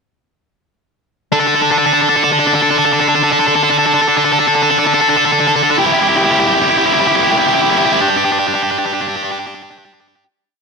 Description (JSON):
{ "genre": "rock", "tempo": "81 BPM", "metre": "3/4", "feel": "straight", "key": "unclear", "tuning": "A4 = 440 Hz", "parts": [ { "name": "sludgy distorted guitar", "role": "solo", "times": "1.3-10.2 s", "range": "D4 to A4", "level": "-11 LUFS", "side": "equal", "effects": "overdrive" } ], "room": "light reverb", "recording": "none", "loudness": "-11 LUFS", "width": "side -4 dB against mid", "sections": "1.3-10.2 build", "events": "build-up 1.3-10.2; fade-out 8.0-10.2", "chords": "1.3 D5; 5.8 Em; 8.0 G5" }